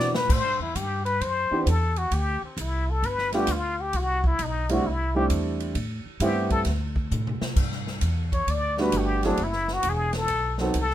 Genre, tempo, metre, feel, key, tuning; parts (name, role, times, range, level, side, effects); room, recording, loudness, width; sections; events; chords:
jazz, small-group swing and bop; 132 BPM; 4/4; swing 67% on 8ths; G major; A4 = 440 Hz
trumpet with plunger mute; melody; 0.0-10.9 s; C4 to D5; -26 LUFS; left 2 dB
warm upright piano; accompaniment; 0.0-10.7 s; E3 to A4; -26 LUFS; right 2 dB
upright bass; bass; 0.0-10.9 s; E1 to B2; -28 LUFS; equal
swinging big-band drum kit; drums; 0.0-10.9 s; crash cymbal, hi-hat, kick drum, ride cymbal, snare drum, toms; -30 LUFS; equal
light reverb; minimal, uncompressed stereo recording; -23 LUFS; side -12 dB against mid
0.0-7.6 A section; 7.6-10.9 B section
drum fill 0.0, 7.1-7.6; muted trumpet solo 7.6-10.9
0.3 Am7 (rootless); 2.1 Cadd9; 3.0 G9; 3.9 C6; 5.8 Am9; 6.7 D5; 7.6 Gmaj9; 9.4 Eadd9; 10.3 B7b9